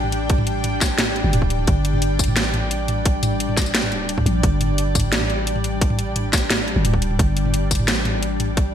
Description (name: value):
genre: half-time drum and bass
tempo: 174 BPM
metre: 4/4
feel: half-time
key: unclear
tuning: A4 = 439 Hz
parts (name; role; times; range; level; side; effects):
- bowed-like drone; sustained chords; 0.0-8.7 s; G3 to G5; -25 LUFS; equal; built-in reverb, vintage 12-bit sampler grit, sidechain pumping
- growling 808-style bass; bass; 0.0-8.7 s; D1 to Bb1; -23 LUFS; equal; none
- drum and bass drum kit; drums; 0.0-8.6 s; hi-hat, snare drum, tambourine, toms; -22 LUFS; equal; overdrive, studio reverb, gated reverb
- electronic kick drum; drums; 0.3-8.6 s; none; -20 LUFS; equal; overdrive, studio reverb
room: light reverb, digital ambience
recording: bright 1980s-style digital production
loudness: -17 LUFS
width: side -9 dB against mid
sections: 0.0-8.7 A section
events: none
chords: 0.0 G5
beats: | 0.30 0.64 0.99 1.33 | 1.68 2.02 2.37 2.71 | 3.06 3.40 3.75 4.09 | 4.43 4.78 5.12 5.47 | 5.81 6.16 6.50 6.85 | 7.19 7.54 7.88 8.23 | 8.57